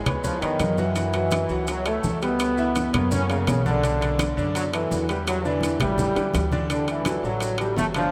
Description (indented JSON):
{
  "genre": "latin, salsa",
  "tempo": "167 BPM",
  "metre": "4/4",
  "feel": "straight",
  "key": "D major",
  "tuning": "A4 = 440 Hz",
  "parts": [
    { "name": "bright concert grand piano", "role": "accompaniment", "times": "0.1-8.1 s", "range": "D3 to F#5", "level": "-31 LUFS", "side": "equal", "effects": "none" },
    { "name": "upright bass", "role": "bass", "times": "0.1-8.1 s", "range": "G1 to F#2", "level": "-31 LUFS", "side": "equal", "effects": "none" },
    { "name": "bongos", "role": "percussion", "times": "0.1-8.1 s", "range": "none", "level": "-38 LUFS", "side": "equal", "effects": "none" },
    { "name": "congas", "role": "percussion", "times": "0.1-8.1 s", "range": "none", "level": "-33 LUFS", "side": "equal", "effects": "none" },
    { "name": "maracas", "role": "percussion", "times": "0.1-8.1 s", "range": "none", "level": "-43 LUFS", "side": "equal", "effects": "none" },
    { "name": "timbales", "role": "percussion", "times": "0.1-8.1 s", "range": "none", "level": "-35 LUFS", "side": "equal", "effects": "none" },
    { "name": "clear trombone section", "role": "melody", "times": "0.2-8.1 s", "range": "C#3 to C#4", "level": "-27 LUFS", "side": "equal", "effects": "none" }
  ],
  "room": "wet huge ambient reverb, RT60 8.4 s",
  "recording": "in a vast, echoing space",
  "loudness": "-24 LUFS",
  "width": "mono",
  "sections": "0.0-6.7 A section; 6.7-8.1 B section",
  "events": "drum fill 5.8-6.7",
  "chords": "0.2 C#7; 1.0 F#m7; 2.4 C#m7b5; 3.1 F#; 3.8 Bm7; 5.3 Em7; 6.0 A7; 6.7 D",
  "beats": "0.24 0.60 | 0.96 1.32 1.68 2.04 | 2.40 2.76 3.12 3.48 | 3.84 4.20 4.55 4.91 | 5.27 5.63 5.99 6.34 | 6.70 7.06 7.42 7.78"
}